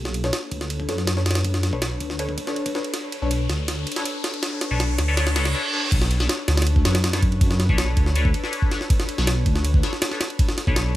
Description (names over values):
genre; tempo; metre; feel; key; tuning
drum and bass, jungle; 161 BPM; 4/4; straight; B minor; A4 = 437 Hz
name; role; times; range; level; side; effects
warbly tape-like pad; sustained chords; 0.0-11.0 s; D4 to C#5; -32 LUFS; left 3 dB; chorus, built-in reverb
dark detuned saw bass; bass; 0.0-10.9 s; B1 to F#2; -22 LUFS; equal; tube saturation
riser and reverse cymbal; sound effects; 2.9-5.9 s; none; -31 LUFS; right 1 dB; none
jungle sampler-style drum kit; drums; 0.1-10.9 s; crash cymbal, kick drum, ride cymbal, snare drum; -23 LUFS; equal; high-pass filter on cymbals, high-pass filter on kick, high-pass filter on snare
band-passed chord stab; stabs; 0.2-11.0 s; D4 to C#5; -30 LUFS; left 2 dB; phaser, dub echo
room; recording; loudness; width
light reverb, digital ambience; none; -20 LUFS; side -15 dB against mid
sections
0.0-5.9 A section; 5.9-11.0 B section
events
build-up 0.0-5.9; filter sweep on synth stab 0.0-5.9; riser 2.9-5.5; drum fill 2.9-5.5; reverse cymbal 5.2-5.9; break 5.5-5.9; drop 5.9-11.0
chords
0.0 Bm9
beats
0.33 0.70 1.08 | 1.45 1.82 2.19 2.57 | 2.94 3.31 3.68 4.06 | 4.43 4.80 5.17 5.55 | 5.92 6.29 6.67 7.04 | 7.41 7.78 8.16 8.53 | 8.90 9.27 9.65 10.02 | 10.39 10.77